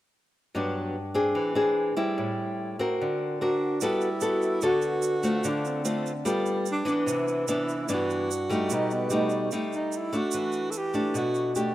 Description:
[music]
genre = bossa nova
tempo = 147 BPM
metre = 4/4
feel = straight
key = G major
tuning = A4 = 439 Hz
[part]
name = nylon-string guitar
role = accompaniment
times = 0.5-11.7 s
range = G2 to Bb4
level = -25 LUFS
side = equal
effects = none
[part]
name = breathy tenor saxophone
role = melody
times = 3.4-11.5 s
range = B3 to A4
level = -31 LUFS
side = right 2 dB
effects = none
[part]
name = tube shaker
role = percussion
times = 3.8-11.7 s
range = none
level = -38 LUFS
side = right 10 dB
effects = none
[sound]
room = light reverb, small room ambience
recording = rough home demo mix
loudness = -25 LUFS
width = side -14 dB against mid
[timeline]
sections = 0.5-3.8 A section; 3.8-11.7 B section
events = none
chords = 0.5 Gmaj7; 1.4 E7alt; 2.2 Am7; 3.0 Daug7; 3.8 Gmaj9; 5.4 Dm7; 6.3 G9; 7.1 Cmaj9; 8.7 B7b13; 10.3 Em11

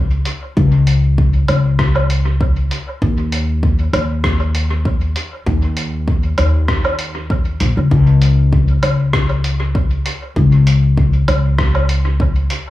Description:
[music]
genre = ambient dub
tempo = 98 BPM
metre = 4/4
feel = swing 54% on 16ths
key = unclear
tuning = A4 = 440 Hz
[part]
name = upright bass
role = bass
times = 0.0-12.5 s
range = Bb1 to Eb2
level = -14 LUFS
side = left 1 dB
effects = none
[part]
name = lo-fi sampler-style drum kit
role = drums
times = 0.3-12.6 s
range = hi-hat, rim click, woodblock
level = -22 LUFS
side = equal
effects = dub echo
[part]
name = electronic kick drum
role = drums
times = 0.6-12.3 s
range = none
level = -18 LUFS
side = equal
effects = overdrive
[sound]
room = little or no reverb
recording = echo-heavy mix, studio ambience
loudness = -13 LUFS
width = side -15 dB against mid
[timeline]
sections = 0.0-12.7 A section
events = none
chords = none

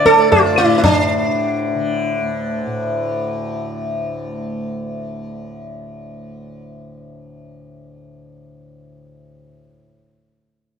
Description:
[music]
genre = indian classical, Hindustani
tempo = 116 BPM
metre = 4/4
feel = straight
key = unclear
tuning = A4 = 440 Hz
[part]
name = sitar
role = melody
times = 0.0-4.4 s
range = D4 to D5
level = -14 LUFS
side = right 1 dB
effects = none
[part]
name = tanpura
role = drone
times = 0.0-9.8 s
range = D2 to D3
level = -24 LUFS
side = left 2 dB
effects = none
[part]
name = tabla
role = percussion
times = 0.1-1.0 s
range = none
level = -18 LUFS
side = equal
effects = none
[sound]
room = moderate small room reverb, RT60 0.5 s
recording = none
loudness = -16 LUFS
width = side -7 dB against mid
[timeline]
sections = 0.8-2.9 A section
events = none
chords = none

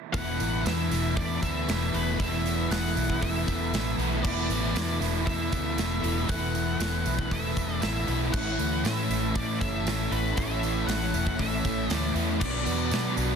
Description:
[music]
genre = rock, shoegaze and dream pop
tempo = 117 BPM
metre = 4/4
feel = straight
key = unclear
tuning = A4 = 442 Hz
[part]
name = octave-fuzz lead guitar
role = melody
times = 0.1-13.1 s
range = B4 to F#5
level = -34 LUFS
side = left 4 dB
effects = distortion, tape echo
[part]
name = picked twelve-string acoustic guitar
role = arpeggios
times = 0.1-13.4 s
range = E3 to A4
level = -41 LUFS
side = right 5 dB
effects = analog chorus, tape echo
[part]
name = overdriven electric guitar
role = riff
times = 0.1-13.4 s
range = A2 to E4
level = -33 LUFS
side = right 13 dB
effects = reverse reverb
[part]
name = overdriven electric guitar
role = riff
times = 0.1-13.4 s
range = A2 to E4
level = -35 LUFS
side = right 1 dB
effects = none
[part]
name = thick fuzz guitar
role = riff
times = 0.1-13.4 s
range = E2 to B3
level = -32 LUFS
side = left 12 dB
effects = distortion, lush chorus
[part]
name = vintage muted fingered electric bass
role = bass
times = 0.1-13.4 s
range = E1 to B2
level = -31 LUFS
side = equal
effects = none
[part]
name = big rock drum kit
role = drums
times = 0.1-13.3 s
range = crash cymbal, hi-hat, kick drum, snare drum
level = -33 LUFS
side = right 1 dB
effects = soft clipping on kick
[part]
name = tambourine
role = percussion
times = 0.1-13.3 s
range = none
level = -44 LUFS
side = right 12 dB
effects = none
[part]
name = string machine, cellos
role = sustained chords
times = 0.2-13.4 s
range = F#4 to E6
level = -40 LUFS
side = equal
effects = ensemble chorus
[sound]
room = little or no reverb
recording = dense, heavily limited modern master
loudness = -25 LUFS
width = side -6 dB against mid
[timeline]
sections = 0.1-13.4 A section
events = none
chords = 0.1 Esus4; 8.3 Aadd9; 12.4 Bm

